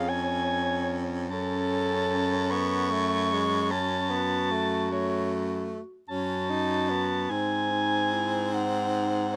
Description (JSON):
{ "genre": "classical, lyrical piece for single-reed quartet", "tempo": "50 BPM (dotted quarters)", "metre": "6/8", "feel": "rubato", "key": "F# minor", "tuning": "A4 = 440 Hz", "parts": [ { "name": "mellow soprano saxophone", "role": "melody", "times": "0.0-9.4 s", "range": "C#5 to C#6", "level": "-32 LUFS", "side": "equal", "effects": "none" }, { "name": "mellow clarinet", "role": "second line", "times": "0.0-9.4 s", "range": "D#4 to C#5", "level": "-36 LUFS", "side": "equal", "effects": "none" }, { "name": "warm tenor saxophone", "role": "accompaniment", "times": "0.0-9.4 s", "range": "G#3 to D#4", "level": "-34 LUFS", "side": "equal", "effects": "none" }, { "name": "clear baritone saxophone", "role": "bass", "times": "0.0-9.4 s", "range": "E#2 to G#2", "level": "-32 LUFS", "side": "equal", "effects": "none" } ], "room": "little or no reverb", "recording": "close, detailed microphones", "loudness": "-27 LUFS", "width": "mono", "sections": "0.0-9.4 A section", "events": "none", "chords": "0.0 C#/E#; 1.3 F#m; 2.5 C#5/F#; 3.7 F#m; 6.1 D#m7b5/F#; 7.3 G#", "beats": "0.07 | 1.30 2.51 | 3.71 4.90 | 6.08 7.29 | 8.52" }